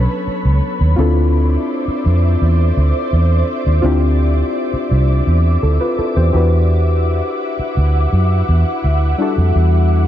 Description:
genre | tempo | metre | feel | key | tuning
contemporary R&B | 84 BPM | 4/4 | straight | unclear | A4 = 439 Hz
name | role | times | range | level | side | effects
muted felt-like synth keys | accompaniment | 0.0-10.1 s | F#3 to C5 | -20 LUFS | left 3 dB | chorus
ethereal airy pad | sustained chords | 0.0-10.1 s | E4 to D6 | -22 LUFS | right 1 dB | ensemble chorus, built-in reverb
vintage muted fingered electric bass | bass | 0.0-10.1 s | C2 to F#2 | -13 LUFS | equal | none
room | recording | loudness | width
light reverb | dark, warm production | -13 LUFS | side -12 dB against mid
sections
0.0-10.1 A section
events
none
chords
0.0 Bm9; 1.0 Dm9; 6.3 Em9

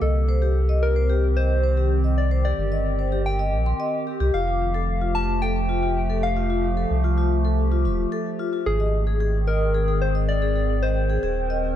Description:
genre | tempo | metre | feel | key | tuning
IDM | 111 BPM | 4/4 | straight | unclear | A4 = 440 Hz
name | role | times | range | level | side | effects
soft struck synth lead | melody | 0.0-11.8 s | Ab4 to A5 | -27 LUFS | left 1 dB | chorus, ping-pong delay
warbly tape-like pad | sustained chords | 0.0-11.8 s | Eb3 to Bb4 | -28 LUFS | equal | chorus, built-in reverb, phaser
vibraphone with medium mallets | arpeggios | 0.0-11.6 s | F4 to C6 | -29 LUFS | left 5 dB | ping-pong delay
warm sub bass | bass | 0.0-11.8 s | Eb1 to C2 | -22 LUFS | equal | none
room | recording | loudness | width
little or no reverb | dark, warm production | -20 LUFS | side -11 dB against mid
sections
0.0-11.8 A section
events
none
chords
0.0 Cm; 4.3 Fadd9; 8.7 Ab

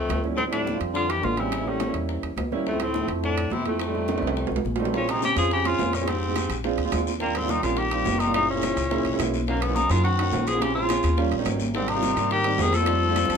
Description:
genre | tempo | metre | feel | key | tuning
Afro-Cuban jazz | 212 BPM | 4/4 | straight | D minor, Bb dorian from 4.9 s | A4 = 435 Hz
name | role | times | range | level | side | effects
warm tenor saxophone | melody | 0.0-13.4 s | A3 to A4 | -26 LUFS | left 2 dB | none
warm baritone saxophone | second line | 0.0-13.4 s | F2 to F3 | -30 LUFS | left 5 dB | none
upright bass | bass | 0.0-13.4 s | Gb1 to Ab2 | -29 LUFS | equal | none
bongos | percussion | 0.1-13.3 s | none | -37 LUFS | left 8 dB | none
congas | percussion | 0.1-13.4 s | none | -34 LUFS | equal | none
timbales | percussion | 0.1-13.4 s | none | -32 LUFS | right 6 dB | none
warm grand piano | accompaniment | 0.2-13.4 s | F3 to A5 | -28 LUFS | right 5 dB | none
guiro | percussion | 4.9-13.4 s | none | -37 LUFS | left 8 dB | none
room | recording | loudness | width
moderate studio reverb, RT60 0.6 s | minimal, uncompressed stereo recording | -22 LUFS | side -6 dB against mid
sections
0.0-4.9 A section; 4.9-13.4 B section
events
drum fill 4.1-4.9, 13.2; grand piano fill 13.2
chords
0.4 Dm11; 1.5 A7b9; 2.7 Dm9; 3.8 F7; 4.9 Bbm7; 6.1 Fm7; 6.6 Bb7; 7.2 Eb6; 8.3 Gb7; 9.5 Bmaj9; 10.6 Bbm7; 11.2 Eb7; 11.7 Abmaj7

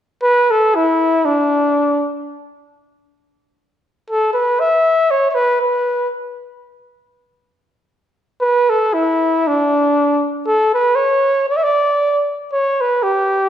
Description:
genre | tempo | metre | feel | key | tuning
mexican folk | free time | none | none | unclear | A4 = 436 Hz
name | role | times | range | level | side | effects
mellow trumpet | solo | 0.2-2.0, 4.1-6.1, 8.4-13.5 s | D4 to E5 | -14 LUFS | equal | slapback echo
room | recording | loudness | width
wet recital hall reverb, RT60 1.7 s | none | -14 LUFS | side -10 dB against mid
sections
0.2-8.4 A section; 8.4-13.5 A section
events
none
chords
none

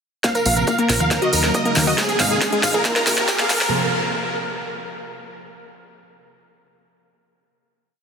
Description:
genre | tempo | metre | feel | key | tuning
uplifting trance | 138 BPM | 4/4 | straight | Bb minor | A4 = 441 Hz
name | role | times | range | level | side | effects
supersaw chords | melody | 0.2-3.7 s | Ab4 to Bb5 | -22 LUFS | right 1 dB | lush chorus, sidechain pumping, low-pass filter, digital delay
wide unison pluck | second line | 0.2-3.7 s | Ab4 to Bb5 | -31 LUFS | equal | none
wide unison pluck | arpeggios | 0.2-3.7 s | Ab3 to Bb4 | -26 LUFS | left 1 dB | sidechain pumping, digital delay
electronic kick drum | drums | 0.2-3.4 s | none | -28 LUFS | equal | high-pass filter on kick
techno drum kit | drums | 0.2-3.7 s | hi-hat, snare drum, toms | -22 LUFS | equal | high-pass filter on snare, sidechain pumping on hats, high-pass filter on hats, sidechain pumping on toms, high-pass filter on toms
tambourine | percussion | 0.2-3.7 s | none | -28 LUFS | right 3 dB | none
riser | sound effects | 1.7-3.7 s | none | -29 LUFS | equal | none
plucky analog bass | bass | 0.5-3.7 s | Ab1 to Eb2 | -24 LUFS | equal | sidechain pumping
room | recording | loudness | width
wet huge ambient reverb, RT60 4.0 s | dense, heavily limited modern master, high-pass filter | -16 LUFS | side -6 dB against mid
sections
0.2-3.7 build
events
build-up 0.2-3.7; drum fill 0.2-3.7; filter sweep on synth arpeggio sound 0.2-3.7; riser 1.7-3.7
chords
0.2 Bbsus2; 1.1 Ebm7; 2.0 Ab; 2.9 Bbsus2

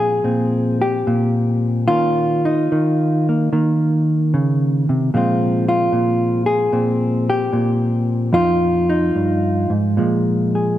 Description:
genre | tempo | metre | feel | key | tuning
solo jazz | 74 BPM | 4/4 | swing 68% on 8ths, rubato | unclear | A4 = 440 Hz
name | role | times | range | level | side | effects
hollow-body jazz guitar | solo | 0.0-10.8 s | F2 to Ab4 | -15 LUFS | equal | none
room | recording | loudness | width
moderate plate reverb, RT60 3.4 s | rough home demo mix | -15 LUFS | side -13 dB against mid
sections
0.0-10.8 A section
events
none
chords
0.0 Bbsus2; 1.9 Ebsus2; 5.1 Bbsus2; 8.3 Fm7; 10.0 Bb7(no3)

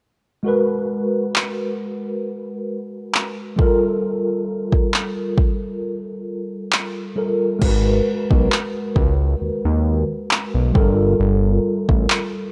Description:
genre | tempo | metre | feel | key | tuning
contemporary R&B | 67 BPM | 4/4 | swing 54% on 16ths | unclear | A4 = 440 Hz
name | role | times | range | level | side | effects
mellow tine electric piano | accompaniment | 0.4-12.5 s | G3 to B4 | -24 LUFS | equal | ensemble chorus
smooth R&B drum kit | drums | 1.4-12.3 s | crash cymbal, handclaps, kick drum | -21 LUFS | equal | overdrive, vintage 12-bit sampler grit
fat analog bass | bass | 7.6-12.1 s | G1 to D#2 | -21 LUFS | equal | none
room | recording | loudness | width
little or no reverb | dry, gritty hardware recording | -20 LUFS | mono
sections
0.5-7.6 A section; 7.6-12.5 B section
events
hi-hats muted 7.6-12.5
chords
0.5 G#m9; 3.6 Gm9; 7.6 G#m9; 10.7 Gm9

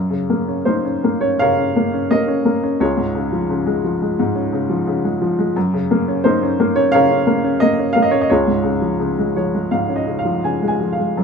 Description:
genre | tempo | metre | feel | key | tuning
classical, lyrical solo piano | 86 BPM | 4/4 | uneven beats, rubato | Db major | A4 = 440 Hz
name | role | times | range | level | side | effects
warm upright piano | solo | 0.0-11.2 s | Db2 to Ab5 | -15 LUFS | equal | none
room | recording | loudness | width
light reverb | close, detailed microphones | -15 LUFS | side -6 dB against mid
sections
0.0-11.2 A section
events
upright piano fill 9.0-11.2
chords
0.0 Gb6; 2.8 Db; 5.6 Gb6; 8.3 Db

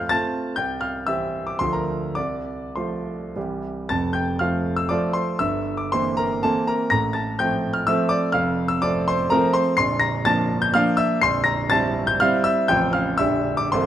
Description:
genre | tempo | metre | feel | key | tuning
classical, romantic triple-time dance for piano with dotted rhythms | 96-132 BPM | 3/4 | rubato | F major | A4 = 440 Hz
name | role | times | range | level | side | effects
warm concert grand piano | solo | 0.0-13.9 s | A0 to C7 | -20 LUFS | equal | none
room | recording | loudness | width
moderate recital hall reverb, RT60 1.7 s | close, detailed microphones | -20 LUFS | side -11 dB against mid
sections
0.0-3.9 A section; 3.9-13.9 B section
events
none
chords
0.0 F; 0.6 C; 1.6 Dm; 2.2 F/C; 3.4 C; 3.9 F; 5.4 C7/G; 6.9 F/A; 8.3 F; 9.8 Bbmaj7; 11.2 C7/Bb; 12.7 F/A; 13.2 Gm/Bb

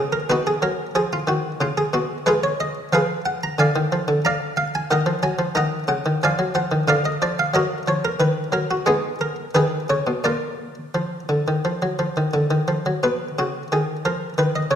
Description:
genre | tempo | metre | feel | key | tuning
classical, baroque-style suite movement for harpsichord | 85-92 BPM | 4/4 | rubato | unclear | A4 = 440 Hz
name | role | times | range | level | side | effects
buff-stop harpsichord | solo | 0.0-14.8 s | Bb2 to Bb5 | -19 LUFS | equal | none
room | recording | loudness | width
wet concert hall reverb, RT60 1.8 s | none | -19 LUFS | side -8 dB against mid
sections
0.0-13.0 A section; 13.0-14.8 B section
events
none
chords
0.0 B; 2.3 Fdim/Ab; 3.6 Ddim; 4.9 Ebm; 6.2 Bb (rootless); 7.5 Ebm; 8.9 Abm; 10.2 Bb; 13.0 B

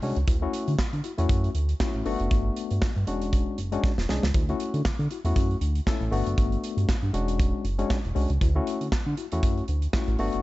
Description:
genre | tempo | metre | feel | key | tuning
early-eighties boogie funk | 118 BPM | 4/4 | swing 56% on 16ths | D major | A4 = 440 Hz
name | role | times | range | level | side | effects
tine electric piano | accompaniment | 0.0-10.4 s | G#3 to A4 | -30 LUFS | left 4 dB | medium stereo tremolo
chorused synth bass | bass | 0.0-10.4 s | E1 to D3 | -26 LUFS | equal | none
modern studio drum kit | drums | 0.0-10.4 s | handclaps, hi-hat, kick drum, snare drum | -27 LUFS | equal | none
room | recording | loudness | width
small room reverb | dark, warm production, nothing above 7.9 kHz | -23 LUFS | side -18 dB against mid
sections
0.0-10.4 A section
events
drum fill 3.8-4.3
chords
0.3 Dmaj9; 2.1 Gmaj9; 3.1 E13; 4.3 Dmaj9; 6.1 Gmaj9; 7.1 E13; 8.4 Dmaj9

